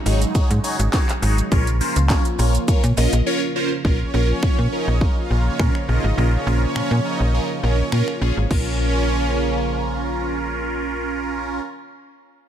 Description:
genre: dance-pop.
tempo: 103 BPM.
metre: 4/4.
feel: straight.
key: Bb minor.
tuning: A4 = 444 Hz.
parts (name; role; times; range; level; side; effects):
chorused pulse-width pad; sustained chords; 0.0-11.6 s; Db3 to F4; -28 LUFS; equal; sidechain pumping.
big bright polysynth; accompaniment; 0.1-11.6 s; Db4 to Eb5; -25 LUFS; right 1 dB; phaser, sidechain pumping.
slap-like FM bass; bass; 0.1-11.6 s; Ab1 to Bb2; -20 LUFS; equal; sidechain pumping.
house drum kit; drums; 0.1-8.7 s; crash cymbal, finger snaps, handclaps, hi-hat, kick drum, shaker, snare drum; -21 LUFS; equal; overdrive.
supersaw pad; melody; 4.0-10.2 s; Db4 to F5; -27 LUFS; right 2 dB; sidechain pumping, tape echo.
room: little or no reverb.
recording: none.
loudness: -18 LUFS.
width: side -10 dB against mid.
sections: 0.0-3.8 A section; 3.8-8.5 B section; 8.5-10.8 C section.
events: break 3.3-3.8.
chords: 0.0 Ab7sus4; 1.5 Bbm.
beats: 0.35 0.93 | 1.52 2.10 2.68 3.26 | 3.85 4.43 5.01 5.59 | 6.18 6.76 7.34 7.92 | 8.51 9.09 9.67 10.25.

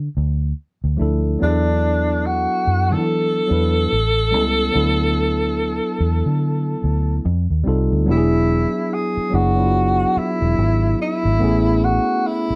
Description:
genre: R&B, neo-soul.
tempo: 72 BPM.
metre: 4/4.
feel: swing 60% on 16ths.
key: unclear.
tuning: A4 = 440 Hz.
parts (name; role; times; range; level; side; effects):
vintage muted fingered electric bass; bass; 0.0-12.5 s; E1 to E3; -22 LUFS; equal; none.
mellow tine electric piano; accompaniment; 1.0-12.6 s; F3 to B4; -24 LUFS; equal; none.
breathy tenor saxophone; melody; 1.4-12.6 s; D4 to A4; -23 LUFS; equal; slapback echo.
room: light reverb.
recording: dark, warm production.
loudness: -19 LUFS.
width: mono.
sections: 0.0-8.1 A section; 8.1-12.6 B section.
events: none.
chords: 0.0 Dmadd9; 1.4 E9sus4; 3.9 A9; 4.7 D69; 7.2 F9; 8.1 E9; 11.4 Amaj9.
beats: 0.57 | 1.40 2.24 3.07 3.90 | 4.74 5.57 6.40 7.24 | 8.07 8.90 9.74 10.57 | 11.40 12.24.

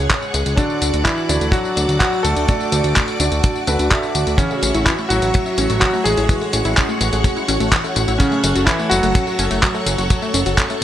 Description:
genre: italo disco.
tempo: 126 BPM.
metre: 4/4.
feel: straight.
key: unclear.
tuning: A4 = 441 Hz.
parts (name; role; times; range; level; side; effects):
string machine, full ensemble; sustained chords; 0.0-10.8 s; F#4 to D6; -23 LUFS; equal; ensemble chorus.
warm grand piano; stabs; 0.0-4.4 s; C#4 to E5; -25 LUFS; right 2 dB; digital delay.
fat analog bass; bass; 0.0-10.8 s; F#1 to D2; -21 LUFS; equal; none.
detuned 8-bit digital drum machine; drums; 0.1-10.8 s; handclaps, hi-hat, tambourine; -21 LUFS; left 1 dB; small room ambience.
kick drum; drums; 0.1-10.7 s; none; -18 LUFS; equal; small room ambience.
warm electric grand piano; melody; 0.6-10.8 s; C#3 to A4; -21 LUFS; equal; tape echo.
analog pluck; arpeggios; 4.4-10.8 s; E3 to F#4; -24 LUFS; left 2 dB; chorus, phaser, digital delay.
room: light reverb, studio reverb.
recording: none.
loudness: -15 LUFS.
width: side -11 dB against mid.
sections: 0.0-10.8 A section.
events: none.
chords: 0.0 C#sus4; 0.6 D; 4.4 A; 8.2 F#m.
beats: 0.10 | 0.58 1.05 1.53 2.01 | 2.48 2.96 3.44 3.91 | 4.39 4.86 5.34 5.82 | 6.29 6.77 7.25 7.72 | 8.20 8.67 9.15 9.63 | 10.10 10.58.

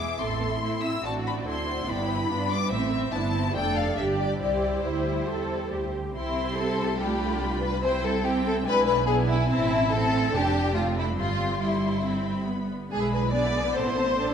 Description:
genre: quick classical-period movement for string orchestra.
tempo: 142 BPM.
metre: 4/4.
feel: straight.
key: C major.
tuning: A4 = 440 Hz.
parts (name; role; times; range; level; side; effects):
warm symphonic violin section; melody; 0.0-14.3 s; C5 to E6; -33 LUFS; left 4 dB; none.
warm symphonic violin section; second line; 0.0-14.3 s; D4 to E5; -28 LUFS; left 2 dB; none.
clear symphonic viola section; accompaniment; 0.0-14.3 s; G3 to C5; -32 LUFS; right 1 dB; none.
rich symphonic double bass section; bass; 0.0-14.3 s; F1 to A2; -30 LUFS; right 2 dB; none.
warm symphonic cello section; bass; 0.0-14.3 s; G3 to A4; -31 LUFS; right 2 dB; none.
room: wet concert hall reverb, RT60 2.0 s.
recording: none.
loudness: -23 LUFS.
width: side -8 dB against mid.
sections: 0.0-6.1 A section; 6.1-14.3 A section.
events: none.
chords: 0.2 Am; 1.0 D7/A; 1.9 G; 2.7 Am; 3.5 Dm/F; 4.0 G5; 4.4 C; 7.0 G7/C; 7.8 C; 8.7 E7/B; 9.5 Am; 10.3 Dm7/F; 11.2 C/G; 12.1 G; 12.9 E7/B; 13.8 Am.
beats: 0.20 0.62 | 1.04 1.46 1.88 2.29 | 2.71 3.12 3.54 3.97 | 4.40 4.84 5.28 5.71 | 6.14 6.57 6.99 7.41 | 7.83 8.25 8.67 9.08 | 9.50 9.91 10.33 10.75 | 11.18 11.61 12.05 12.48 | 12.91 13.34 13.76 14.18.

